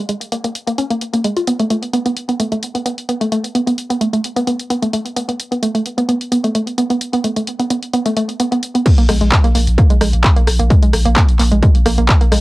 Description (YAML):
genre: driving peak-time techno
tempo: 130 BPM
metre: 4/4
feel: straight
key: unclear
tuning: A4 = 439 Hz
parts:
  - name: woody wave-folded pluck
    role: riff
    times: 0.1-12.4 s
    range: Ab3 to F4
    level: -17 LUFS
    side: right 1 dB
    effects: chorus, tube saturation, sidechain pumping, cassette tape, analog delay
  - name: techno drum kit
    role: drums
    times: 0.1-12.4 s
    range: crash cymbal, handclaps, hi-hat, rim click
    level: -21 LUFS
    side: equal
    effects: overdrive, sidechain pumping on hats, cassette tape, sidechain pumping on cymbals
  - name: electronic kick drum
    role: drums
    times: 8.9-12.2 s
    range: none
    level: -11 LUFS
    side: equal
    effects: overdrive, cassette tape
  - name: saturated sub bass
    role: bass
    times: 9.1-12.4 s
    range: Bb1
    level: -15 LUFS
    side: equal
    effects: overdrive, sidechain pumping, low-pass filter
room: light reverb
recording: home recording on cassette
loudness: -13 LUFS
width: side -20 dB against mid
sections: 0.0-8.9 A section; 8.9-12.4 B section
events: drop 8.9-12.4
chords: 0.0 N.C.; 1.5 Asus2; 8.9 N.C.